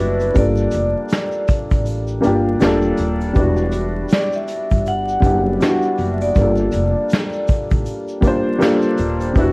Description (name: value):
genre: lo-fi hip hop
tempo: 80 BPM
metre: 4/4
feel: swing 59% on 16ths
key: unclear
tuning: A4 = 439 Hz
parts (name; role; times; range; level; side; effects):
- vibraphone with medium mallets; melody; 0.0-7.7 s; B4 to F#5; -22 LUFS; equal; low-pass filter, tape echo
- dark upright piano; accompaniment; 0.0-9.5 s; G3 to C5; -19 LUFS; equal; low-pass filter
- upright bass; bass; 0.0-9.5 s; D#1 to A1; -21 LUFS; equal; none
- vintage brush drum kit; drums; 0.2-9.5 s; hi-hat, kick drum, shaker, snare drum; -18 LUFS; equal; none
- tube shaker; percussion; 0.2-9.5 s; none; -47 LUFS; right 1 dB; none
room: light reverb, small room ambience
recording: worn, warbling old tape, cassette tape, vinyl crackle, warbly pitch drift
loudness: -15 LUFS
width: side -28 dB against mid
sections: 0.0-9.5 A section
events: none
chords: 0.4 Gm9; 3.4 Em9; 6.4 Gm9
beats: | 0.36 1.11 1.86 2.61 | 3.36 4.11 4.86 5.61 | 6.36 7.11 7.86 8.61 | 9.36